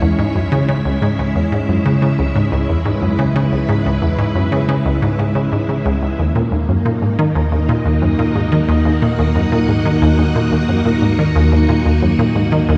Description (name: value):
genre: ambient, sequencer-driven space music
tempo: 90 BPM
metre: 4/4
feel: straight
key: C# dorian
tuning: A4 = 440 Hz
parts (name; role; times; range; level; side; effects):
- string machine, full ensemble; sustained chords; 0.0-12.8 s; G#3 to F#5; -21 LUFS; equal; ensemble chorus
- resonant blip pluck; riff; 0.0-12.8 s; C#2 to D#3; -17 LUFS; equal; chorus, delay
- fat analog bass; bass; 0.0-12.8 s; C#2 to D#2; -29 LUFS; equal; none
room: wet concert hall reverb, RT60 2.0 s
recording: dark, warm production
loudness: -16 LUFS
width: mono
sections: 0.0-12.8 A section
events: none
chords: 0.0 C#m; 6.2 D#m